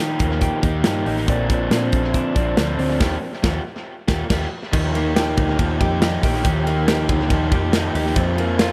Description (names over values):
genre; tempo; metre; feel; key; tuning
jangly indie pop; 140 BPM; 4/4; straight; unclear; A4 = 440 Hz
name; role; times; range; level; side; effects
raw garage guitar; accompaniment; 0.0-8.7 s; Bb2 to G4; -26 LUFS; equal; overdrive, tape echo
direct-recorded clean electric guitar; arpeggios; 0.0-8.7 s; F2 to G4; -28 LUFS; equal; tape echo
vintage muted picked electric bass; bass; 0.0-8.7 s; A1 to Eb3; -26 LUFS; equal; none
modern studio drum kit; drums; 0.2-8.7 s; crash cymbal, hi-hat, kick drum, ride cymbal, snare drum; -24 LUFS; equal; tape echo
room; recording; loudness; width
light reverb, studio ambience; echo-heavy mix; -20 LUFS; mono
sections
0.0-4.7 A section; 4.7-8.7 B section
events
band accent 3.0-4.7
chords
0.0 Ebadd9; 1.3 Bbadd9; 3.0 Ebadd9; 8.2 Fsus4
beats
0.00 0.43 0.86 | 1.29 1.72 2.15 2.58 | 3.00 3.44 3.87 4.29 | 4.72 5.16 5.59 6.02 | 6.45 6.88 7.31 7.74 | 8.17 8.60